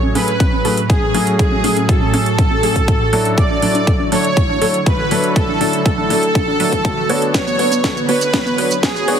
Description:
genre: progressive house.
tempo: 121 BPM.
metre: 4/4.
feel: straight.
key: unclear.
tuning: A4 = 440 Hz.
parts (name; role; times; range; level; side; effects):
soft supersaw; melody; 0.0-9.2 s; G#4 to D5; -20 LUFS; right 1 dB; sidechain pumping, ping-pong delay.
clear chamber violin section; second line; 0.0-9.2 s; G#4 to D5; -23 LUFS; right 2 dB; sidechain pumping, digital delay.
evolving wavetable pad; sustained chords; 0.1-9.2 s; A2 to C#5; -23 LUFS; equal; ensemble chorus, built-in reverb, sidechain pumping.
wide unison pluck; arpeggios; 0.0-9.2 s; B3 to B4; -24 LUFS; equal; sidechain pumping, digital delay.
warm baby grand piano; stabs; 0.0-9.2 s; F#3 to C#5; -20 LUFS; equal; sidechain pumping, low-pass filter, digital delay.
house drum kit; drums; 0.2-9.2 s; hi-hat, shaker, snare drum; -22 LUFS; right 1 dB; none.
electronic kick drum; drums; 0.4-8.9 s; none; -17 LUFS; equal; none.
riser; sound effects; 8.8-9.2 s; none; barely audible; none; none.
room: light reverb.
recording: heavily compressed radio sound, multiband compression, high-pass filter.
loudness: -13 LUFS.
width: side -8 dB against mid.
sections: 0.0-9.2 A section.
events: build-up 0.0-9.2; filter sweep on synth pluck 0.0-9.2; filter sweep 0.0-9.2; drum fill 7.3-9.2.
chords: 0.0 F#madd9; 3.4 Dadd9; 7.3 Bmadd9.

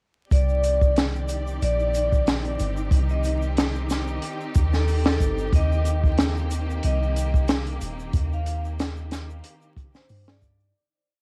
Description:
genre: trip hop.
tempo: 92 BPM.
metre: 4/4.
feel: swing 53% on 16ths.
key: C minor.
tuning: A4 = 441 Hz.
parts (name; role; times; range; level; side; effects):
vibraphone with medium hard mallets; melody; 0.3-10.7 s; A4 to F5; -32 LUFS; equal; cassette tape, dub echo.
clear studio string section; sustained chords; 0.3-10.7 s; Eb3 to D5; -36 LUFS; equal; cassette tape.
soft 808-style bass; bass; 0.3-10.7 s; Eb1 to G2; -27 LUFS; equal; none.
open jazz drum kit; drums; 0.3-10.6 s; hi-hat, kick drum, snare drum; -26 LUFS; equal; none.
tube shaker; percussion; 0.3-10.7 s; none; -48 LUFS; equal; none.
flickering grainy texture; texture; 0.8-10.8 s; Eb4 to D6; -42 LUFS; equal; built-in reverb, cassette tape.
room: light reverb, small room ambience.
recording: home recording on cassette, vinyl crackle.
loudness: -23 LUFS.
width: mono.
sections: 0.3-10.7 groove.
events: fade-out 7.3-10.7.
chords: 0.3 Cmadd9; 5.5 Eb6.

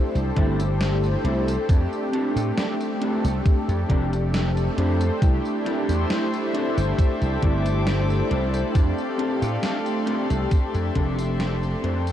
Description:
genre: vaporwave.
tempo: 68 BPM.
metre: 4/4.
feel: straight.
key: unclear.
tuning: A4 = 440 Hz.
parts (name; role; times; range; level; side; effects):
mellow synth brass; accompaniment; 0.0-12.1 s; A3 to C5; -25 LUFS; equal; wide subtle chorus, tape echo.
slap bass; bass; 0.2-12.1 s; F1 to A2; -23 LUFS; equal; tube saturation.
gated 80s digital drum machine; drums; 0.2-12.1 s; hi-hat, snare drum, tambourine; -33 LUFS; equal; gated reverb, gated reverb snare.
electric guitar at the edge of break-up; riff; 0.4-12.1 s; C4 to A4; -31 LUFS; equal; ensemble chorus, tape echo.
electronic kick drum; drums; 0.4-11.1 s; none; -19 LUFS; equal; none.
rich chamber string section; sustained chords; 5.2-12.1 s; A4 to D6; -33 LUFS; left 2 dB; none.
room: moderate huge ambient reverb, RT60 7.8 s.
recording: dreamy mix soaked in reverb, cassette tape.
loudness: -20 LUFS.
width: side -11 dB against mid.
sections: 0.0-12.1 A section.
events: fade-out 9.9-12.1.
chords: 0.0 C69; 1.7 F6; 5.2 C69; 8.7 F6.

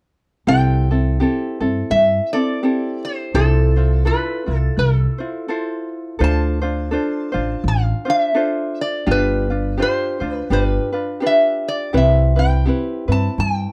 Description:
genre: Hawaiian.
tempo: 84 BPM.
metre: 4/4.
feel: swing 58% on 8ths.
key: C major.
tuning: A4 = 440 Hz.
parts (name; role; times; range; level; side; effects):
metal-body resonator slide guitar; melody; 0.5-13.7 s; A4 to A5; -23 LUFS; equal; none.
ukulele; accompaniment; 0.5-13.7 s; C4 to C5; -24 LUFS; equal; none.
upright bass; bass; 0.5-13.6 s; G1 to G2; -20 LUFS; equal; none.
room: light reverb.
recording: dry, close 1970s-style studio recording.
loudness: -19 LUFS.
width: mono.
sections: 0.5-13.7 A section.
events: none.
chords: 0.5 C6; 3.3 Fmaj7/C; 6.2 Dm7; 9.1 G7sus4; 10.5 G7; 11.9 Cmaj7.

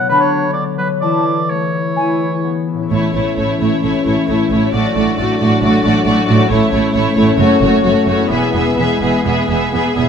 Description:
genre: classical.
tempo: 124-137 BPM.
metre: 4/4.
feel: rubato.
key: A major.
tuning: A4 = 440 Hz.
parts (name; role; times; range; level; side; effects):
warm oboe; second line; 0.0-2.7 s; B4 to D5; -19 LUFS; right 4 dB; none.
concert harp; arpeggios; 0.0-10.1 s; E2 to B4; -20 LUFS; left 7 dB; none.
clear clarinet; second line; 0.1-2.3 s; D4 to E4; -23 LUFS; right 1 dB; none.
hollow small flute group; second line; 0.1-2.2 s; G#5 to B5; -19 LUFS; left 2 dB; none.
rich symphonic violin section; melody; 2.9-10.1 s; C#5 to E5; -21 LUFS; left 2 dB; none.
rich studio violin section; second line; 2.9-10.1 s; E4 to G#4; -20 LUFS; left 2 dB; none.
warm symphonic viola section; accompaniment; 2.9-10.1 s; A3 to B3; -18 LUFS; right 3 dB; none.
dark French horn section; sustained chords; 2.9-9.9 s; E3 to D4; -18 LUFS; left 4 dB; none.
dark symphonic double bass section; bass; 2.9-10.0 s; E1 to A1; -21 LUFS; right 5 dB; none.
warm symphonic cello section; bass; 2.9-10.0 s; E2 to A2; -20 LUFS; right 4 dB; none.
room: moderate concert hall reverb, RT60 2.0 s.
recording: close, detailed microphones.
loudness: -12 LUFS.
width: side -7 dB against mid.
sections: 0.0-2.9 A section; 2.9-10.1 B section.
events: none.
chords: 0.1 Bm/D; 1.0 A/E; 2.0 E; 2.9 A; 7.4 F#m; 8.3 E.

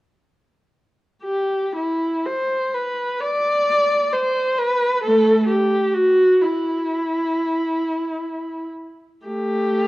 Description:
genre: classical, free, expressive piece for unaccompanied viola.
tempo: 39-68 BPM.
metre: 4/4.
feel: rubato.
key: A dorian.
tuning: A4 = 440 Hz.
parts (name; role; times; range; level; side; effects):
rich viola; solo; 1.2-9.9 s; A3 to D5; -18 LUFS; equal; none.
room: moderate scoring stage reverb, RT60 1.8 s.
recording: worn, warbling old tape, cassette tape, warbly pitch drift.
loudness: -18 LUFS.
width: side -18 dB against mid.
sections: 1.2-9.3 A section.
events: none.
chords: none.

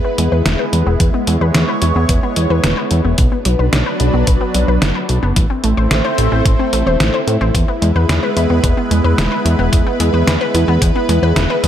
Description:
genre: synthwave.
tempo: 110 BPM.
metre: 4/4.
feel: straight.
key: E mixolydian.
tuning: A4 = 440 Hz.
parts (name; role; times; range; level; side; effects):
lush unison pad; sustained chords; 0.0-11.7 s; F#3 to C#5; -18 LUFS; equal; chorus, phaser, sidechain pumping.
analog pluck; arpeggios; 0.0-11.7 s; D3 to C5; -21 LUFS; left 2 dB; chorus, tape echo.
fat analog bass; bass; 0.2-11.7 s; E1 to A2; -15 LUFS; equal; none.
detuned 8-bit digital drum machine; drums; 0.2-11.7 s; hi-hat, snare drum; -19 LUFS; equal; none.
electronic kick drum; drums; 1.0-10.9 s; none; -15 LUFS; equal; none.
room: little or no reverb.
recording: none.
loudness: -12 LUFS.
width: side -10 dB against mid.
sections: 0.0-11.7 A section.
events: filter sweep on synth arpeggio sound 0.0-11.7.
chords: 0.0 E; 3.2 Bm; 5.4 Am; 7.5 E.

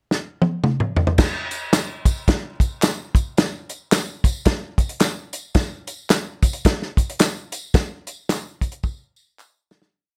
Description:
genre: soul.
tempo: 110 BPM.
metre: 4/4.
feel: swing 59% on 8ths.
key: none.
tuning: none.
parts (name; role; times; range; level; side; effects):
warm soul drum kit; drums; 0.1-9.9 s; crash cymbal, hi-hat, kick drum, snare drum, toms; -20 LUFS; equal; none.
tambourine and handclaps; percussion; 1.2-9.8 s; none; -32 LUFS; equal; none.
room: light reverb.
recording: none.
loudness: -22 LUFS.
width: mono.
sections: 0.0-1.2 pickup bar; 1.2-9.9 verse.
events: drum fill 0.1-1.2, 8.8-9.9; fade-out 7.7-9.9.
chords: none.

